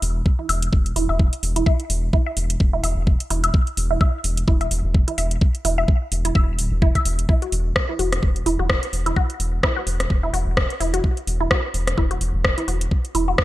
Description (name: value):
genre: minimal techno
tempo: 128 BPM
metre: 4/4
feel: swing 56% on 16ths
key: unclear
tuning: A4 = 441 Hz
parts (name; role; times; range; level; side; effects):
- round analog bass; bass; 0.0-13.3 s; D1 to E1; -23 LUFS; equal; sidechain pumping
- garage drum kit; drums; 0.0-13.4 s; hi-hat, rim click; -24 LUFS; equal; gated reverb
- electronic kick drum; drums; 0.3-13.4 s; none; -18 LUFS; equal; none
- resonant blip pluck; riff; 0.4-13.3 s; E4 to E5; -25 LUFS; right 1 dB; phaser, vintage 12-bit sampler grit, sidechain pumping, digital delay
room: little or no reverb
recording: bright 1980s-style digital production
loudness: -18 LUFS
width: side -16 dB against mid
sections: 0.0-13.4 A section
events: none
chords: none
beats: 0.26 0.73 1.20 | 1.66 2.13 2.60 3.07 | 3.54 4.01 4.48 4.95 | 5.41 5.88 6.35 6.82 | 7.29 7.76 8.23 8.70 | 9.16 9.63 10.10 10.57 | 11.04 11.51 11.98 12.45 | 12.91 13.38